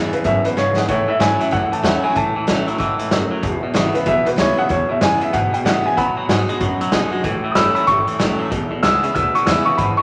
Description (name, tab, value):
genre	rockabilly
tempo	189 BPM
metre	4/4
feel	swing 63% on 8ths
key	E major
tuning	A4 = 440 Hz
part	picked steel-string acoustic guitar	accompaniment	0.0-10.0 s	E2 to F#4	-26 LUFS	equal	none
part	twangy electric guitar	riff	0.0-10.0 s	E2 to G#3	-26 LUFS	equal	none
part	upright bass	bass	0.0-10.0 s	E1 to B2	-29 LUFS	equal	none
part	dark upright piano	melody	0.1-10.0 s	B4 to E6	-21 LUFS	equal	none
part	vintage drum kit	drums	0.1-9.9 s	hi-hat, kick drum, snare drum	-25 LUFS	equal	none
room	wet large studio reverb, RT60 1.5 s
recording	none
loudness	-18 LUFS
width	mono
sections	0.0-10.0 A section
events	drum fill 0.6-0.9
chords	0.0 E; 0.9 A; 3.4 E; 6.0 B; 7.2 A; 8.5 E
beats	0.25 0.57 | 0.89 1.21 1.52 1.84 | 2.16 2.48 2.80 3.11 | 3.43 3.75 4.07 4.38 | 4.70 5.02 5.34 5.66 | 5.97 6.29 6.61 6.93 | 7.25 7.56 7.88 8.20 | 8.52 8.83 9.15 9.47 | 9.79